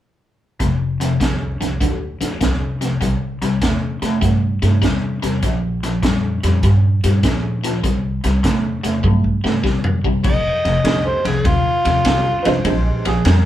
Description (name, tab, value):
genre	electric blues shuffle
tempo	100 BPM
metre	4/4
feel	swing 67% on 8ths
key	F major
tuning	A4 = 440 Hz
part	overdriven semi-hollow guitar	riff	0.6-13.5 s	F2 to A3	-20 LUFS	left 1 dB	phaser
part	upright bass	bass	0.6-13.5 s	F1 to G2	-20 LUFS	equal	none
part	crunchy breakbeat drum kit	drums	0.6-13.4 s	crash cymbal, hi-hat, kick drum, ride cymbal, snare drum, toms	-21 LUFS	equal	none
part	overdriven harmonica	melody	10.3-12.6 s	F4 to Eb5	-18 LUFS	equal	none
part	honky-tonk upright piano	accompaniment	10.8-13.0 s	Ab3 to G4	-22 LUFS	right 4 dB	none
part	clear upright piano	second line	12.4-13.5 s	Ab4 to C5	-24 LUFS	right 2 dB	none
room	moderate studio reverb, RT60 0.8 s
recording	band playing live in one room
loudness	-15 LUFS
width	side -12 dB against mid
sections	0.6-10.2 A section; 10.2-13.5 B section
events	drum fill 9.0-10.2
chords	0.6 F5; 3.0 C; 5.4 Bb; 7.8 C; 10.2 F13; 12.7 Bb13